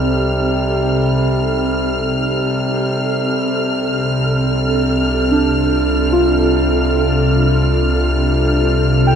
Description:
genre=ambient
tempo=free time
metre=none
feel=none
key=unclear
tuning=A4 = 440 Hz
part: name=ethereal airy pad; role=sustained chords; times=0.0-9.2 s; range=C3 to A4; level=-17 LUFS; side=equal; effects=ensemble chorus, built-in reverb
part: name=deep rumbling drone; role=bass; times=0.0-9.2 s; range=C2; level=-21 LUFS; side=equal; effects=built-in reverb
part: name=hand-pumped harmonium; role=drone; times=0.0-9.2 s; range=C3 to G3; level=-23 LUFS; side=left 1 dB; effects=none
part: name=dark studio violin section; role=texture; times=0.0-9.2 s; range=F6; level=-23 LUFS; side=left 1 dB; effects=none
part: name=muted felt-like synth keys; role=arpeggios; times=5.3-9.2 s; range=D4 to G5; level=-18 LUFS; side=right 1 dB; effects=chorus, ping-pong delay
room=wet cathedral reverb, RT60 5.2 s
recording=cassette tape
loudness=-14 LUFS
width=side -7 dB against mid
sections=0.0-9.2 A section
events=none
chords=0.0 F7/C; 3.0 Dm7/C

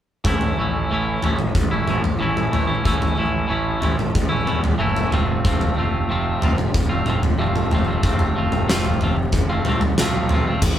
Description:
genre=quiet-loud alternative rock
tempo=93 BPM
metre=4/4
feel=straight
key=unclear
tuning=A4 = 440 Hz
part: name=twangy electric guitar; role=arpeggios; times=0.2-10.8 s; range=F2 to F4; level=-23 LUFS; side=equal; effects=slapback echo
part: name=fuzz picked electric bass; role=bass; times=0.2-10.8 s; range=F1 to E2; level=-25 LUFS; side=equal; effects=overdrive
part: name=huge arena drum kit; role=drums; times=0.2-10.8 s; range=crash cymbal, kick drum, snare drum, toms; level=-20 LUFS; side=equal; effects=none
room=light reverb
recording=band playing live in one room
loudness=-18 LUFS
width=side -10 dB against mid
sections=0.3-10.6 A section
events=none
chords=0.3 A; 5.1 F

